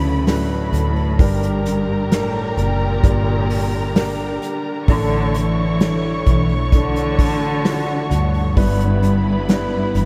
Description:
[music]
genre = pop ballad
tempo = 65 BPM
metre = 4/4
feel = straight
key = unclear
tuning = A4 = 440 Hz
[part]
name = dark cello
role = melody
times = 0.0-10.1 s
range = G2 to E3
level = -24 LUFS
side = equal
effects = delay
[part]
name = warm studio violin section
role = second line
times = 0.0-10.1 s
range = Bb4 to C#6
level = -30 LUFS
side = equal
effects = delay
[part]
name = dark baby grand piano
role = accompaniment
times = 0.0-10.1 s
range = G2 to D5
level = -27 LUFS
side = equal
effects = none
[part]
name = warm symphonic string section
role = sustained chords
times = 0.0-10.1 s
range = D3 to Bb4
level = -31 LUFS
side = equal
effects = none
[part]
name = vintage muted fingered electric bass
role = bass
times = 0.0-10.1 s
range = F#1 to D2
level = -23 LUFS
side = equal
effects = none
[part]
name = unplugged drum kit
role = drums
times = 0.3-10.1 s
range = hi-hat, kick drum, snare drum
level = -20 LUFS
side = equal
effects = none
[sound]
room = moderate lush hall reverb, RT60 2.8 s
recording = dreamy mix soaked in reverb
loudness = -18 LUFS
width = mono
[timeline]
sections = 0.0-10.1 A section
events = none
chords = 0.0 Dadd9; 1.2 Gm; 4.9 Asus4; 8.6 G6

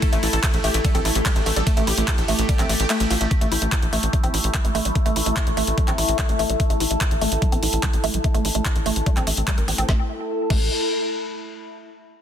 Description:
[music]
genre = psychedelic trance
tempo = 146 BPM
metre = 4/4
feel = straight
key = unclear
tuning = A4 = 441 Hz
[part]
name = supersaw stab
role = melody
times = 0.0-3.3 s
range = A3 to A4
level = -27 LUFS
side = right 1 dB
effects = phaser, sidechain pumping, dub echo
[part]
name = overtone-sweeping drone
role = sustained chords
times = 0.0-9.9 s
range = A3 to G4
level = -30 LUFS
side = left 2 dB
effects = chorus, built-in reverb, sidechain pumping
[part]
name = drum and bass drum kit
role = drums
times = 0.0-10.6 s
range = crash cymbal, handclaps, hi-hat, ride cymbal, snare drum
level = -26 LUFS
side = equal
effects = overdrive
[part]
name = electronic kick drum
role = drums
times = 0.0-10.6 s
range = none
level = -22 LUFS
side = equal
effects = overdrive
[part]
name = warbly tape-like pad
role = texture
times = 0.0-11.5 s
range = E4 to A5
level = -30 LUFS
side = left 1 dB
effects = chorus, built-in reverb, sidechain pumping
[part]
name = woody wave-folded pluck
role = riff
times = 0.1-10.7 s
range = G3 to Bb4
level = -28 LUFS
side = moving between left 8 dB and right 8 dB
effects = chorus, auto-pan, sidechain pumping, ping-pong delay
[part]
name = tight sequencer bass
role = bass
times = 0.1-10.7 s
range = A1 to Bb1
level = -24 LUFS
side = equal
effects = none
[sound]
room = little or no reverb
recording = dense, heavily limited modern master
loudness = -18 LUFS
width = side -9 dB against mid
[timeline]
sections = 0.0-3.3 A section; 3.3-9.9 B section; 9.9-11.5 C section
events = drop 0.0-3.3; kick drops out 2.9-3.3; filter sweep on analog synth bass 3.3-9.9; filter sweep on synth arpeggio sound 3.3-9.9; filter sweep on synth drone 3.3-9.9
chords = 0.0 A5

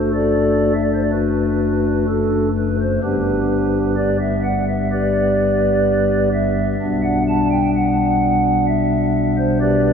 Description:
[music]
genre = classical, chorale-style piece for pipe organ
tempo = 63 BPM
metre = 4/4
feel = rubato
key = G major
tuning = A4 = 440 Hz
[part]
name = pipe organ, stopped flute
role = solo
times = 0.0-9.9 s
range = F#1 to A5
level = -15 LUFS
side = equal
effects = none
[sound]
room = wet cathedral reverb, RT60 4.5 s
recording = none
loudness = -15 LUFS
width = side -7 dB against mid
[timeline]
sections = 0.0-9.9 A section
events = none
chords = 0.0 D7/F#; 3.0 G; 6.8 G/B

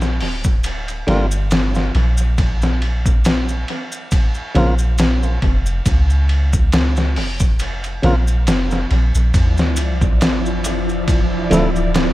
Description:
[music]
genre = trip hop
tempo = 69 BPM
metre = 4/4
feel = swing 55% on 16ths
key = unclear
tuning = A4 = 442 Hz
[part]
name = soft 808-style bass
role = bass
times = 0.0-12.1 s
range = D1 to Db2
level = -17 LUFS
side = equal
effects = none
[part]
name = trip hop sampler-style drum kit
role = drums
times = 0.0-12.1 s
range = hi-hat, kick drum, ride cymbal, snare drum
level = -18 LUFS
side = equal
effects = dub echo
[part]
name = maracas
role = percussion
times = 0.0-12.1 s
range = none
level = -32 LUFS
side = equal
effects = dub echo
[part]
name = tonewheel organ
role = accompaniment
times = 1.1-11.7 s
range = Db3 to F4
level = -21 LUFS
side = equal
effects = overdrive, tremolo, vintage 12-bit sampler grit, tape echo
[part]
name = string machine, cellos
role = sustained chords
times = 9.3-12.1 s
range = F3 to D5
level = -21 LUFS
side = equal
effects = ensemble chorus, vintage 12-bit sampler grit
[part]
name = sub drop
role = sound effects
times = 9.3-12.1 s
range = none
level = -22 LUFS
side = equal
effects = none
[sound]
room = digital ambience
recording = echo-heavy mix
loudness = -14 LUFS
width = side -16 dB against mid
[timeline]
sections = 0.0-9.3 A section; 9.3-12.1 B section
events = filter sweep on tonewheel organ 0.0-9.3; impact 9.3-12.1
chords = 0.0 Gm7; 2.4 Bbm; 9.3 Dmadd9

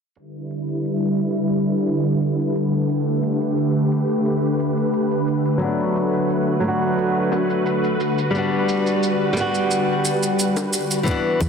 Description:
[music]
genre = sunset chillout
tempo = 88 BPM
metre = 4/4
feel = straight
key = E minor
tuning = A4 = 440 Hz
[part]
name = soft string machine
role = sustained chords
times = 0.3-11.5 s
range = D3 to D5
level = -20 LUFS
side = equal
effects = ensemble chorus
[part]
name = shaker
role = drums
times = 0.2-11.5 s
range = none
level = -28 LUFS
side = right 3 dB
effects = overdrive
[part]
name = flamenco guitar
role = accompaniment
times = 5.6-11.5 s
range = E3 to F#4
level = -21 LUFS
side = left 1 dB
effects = auto-pan, ping-pong delay
[part]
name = bongos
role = percussion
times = 7.3-11.5 s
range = none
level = -32 LUFS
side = left 5 dB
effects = none
[part]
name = electronic kick drum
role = drums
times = 11.1-11.2 s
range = none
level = -25 LUFS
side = equal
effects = none
[part]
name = woody fretless electric bass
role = bass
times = 11.4-11.5 s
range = E2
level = -19 LUFS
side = equal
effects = none
[sound]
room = wet scoring stage reverb, RT60 2.0 s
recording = dense, heavily limited modern master, low-pass filter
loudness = -18 LUFS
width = side -6 dB against mid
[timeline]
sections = 0.2-11.1 A section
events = filter sweep 0.2-11.1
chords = 0.2 Em7; 2.5 A9sus4; 5.6 Bm7; 8.0 Gmaj7

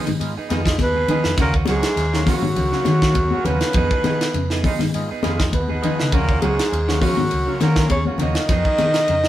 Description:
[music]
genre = afrobeat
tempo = 101 BPM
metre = 4/4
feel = swing 55% on 16ths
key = Eb minor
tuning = A4 = 439 Hz
[part]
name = overdriven tonewheel organ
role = accompaniment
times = 0.0-8.5 s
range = Gb3 to F4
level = -30 LUFS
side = equal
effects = chorus vibrato, slow rotary speaker
[part]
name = clean electric guitar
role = stabs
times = 0.0-9.0 s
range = Eb3 to Ab4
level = -29 LUFS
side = right 5 dB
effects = none
[part]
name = semi-hollow electric guitar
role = arpeggios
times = 0.1-9.3 s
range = Db3 to Gb3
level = -26 LUFS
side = left 2 dB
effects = none
[part]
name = hollow-body short-scale fingered electric bass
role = bass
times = 0.1-9.3 s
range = Db2 to Eb3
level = -23 LUFS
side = equal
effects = none
[part]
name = tight funk drum kit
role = drums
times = 0.1-9.3 s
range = hi-hat, kick drum, ride cymbal, snare drum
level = -23 LUFS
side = equal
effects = none
[part]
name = congas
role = percussion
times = 0.1-9.2 s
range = none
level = -26 LUFS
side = left 3 dB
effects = none
[part]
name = breathy alto saxophone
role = melody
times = 0.8-9.3 s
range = Gb4 to Eb5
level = -22 LUFS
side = equal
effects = none
[part]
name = raspy baritone saxophone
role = second line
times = 0.8-9.3 s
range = Gb2 to Eb3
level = -31 LUFS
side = left 1 dB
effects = none
[part]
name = trombone with bucket mute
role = second line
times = 0.8-9.3 s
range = Gb3 to Eb4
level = -32 LUFS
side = right 3 dB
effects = none
[sound]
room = moderate studio reverb, RT60 0.7 s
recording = band playing live in one room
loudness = -17 LUFS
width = side -13 dB against mid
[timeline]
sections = 0.0-9.3 A section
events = none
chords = 0.0 Fm7b5; 1.4 Ebm7; 3.8 Fm7b5; 6.1 Ebm7; 8.5 Fm7b5

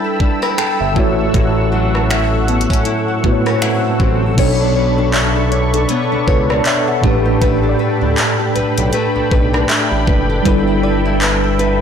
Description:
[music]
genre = contemporary R&B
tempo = 79 BPM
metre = 4/4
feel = swing 58% on 16ths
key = B minor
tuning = A4 = 440 Hz
[part]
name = mellow tine electric piano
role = accompaniment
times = 0.0-11.8 s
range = A2 to B5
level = -17 LUFS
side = right 1 dB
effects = medium stereo tremolo
[part]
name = warm analog pad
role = sustained chords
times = 0.0-11.8 s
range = D4 to E6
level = -21 LUFS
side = equal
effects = chorus
[part]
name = nylon-string guitar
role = arpeggios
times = 0.0-11.8 s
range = A2 to C#5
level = -21 LUFS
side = left 5 dB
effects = digital delay
[part]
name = soft round pluck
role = texture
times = 0.0-11.8 s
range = B4 to F#5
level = -28 LUFS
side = right 3 dB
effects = chorus, digital delay
[part]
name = smooth R&B drum kit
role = drums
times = 0.2-11.8 s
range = crash cymbal, finger snaps, handclaps, hi-hat, kick drum, rim click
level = -18 LUFS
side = equal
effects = soft clipping on snare
[part]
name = smooth gliding synth bass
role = bass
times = 0.8-11.8 s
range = F#1 to D2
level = -19 LUFS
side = equal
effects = none
[part]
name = swell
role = sound effects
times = 2.9-4.4 s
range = none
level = -30 LUFS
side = right 1 dB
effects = none
[sound]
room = light reverb, digital ambience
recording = blown-out, overdriven recording, overdrive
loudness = -12 LUFS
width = side -8 dB against mid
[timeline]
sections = 0.0-4.4 A section; 4.4-11.8 B section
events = swell 2.9-4.4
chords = 0.0 G69; 1.0 F#m7/A; 4.4 Bm9; 7.0 A9sus4; 10.5 G69

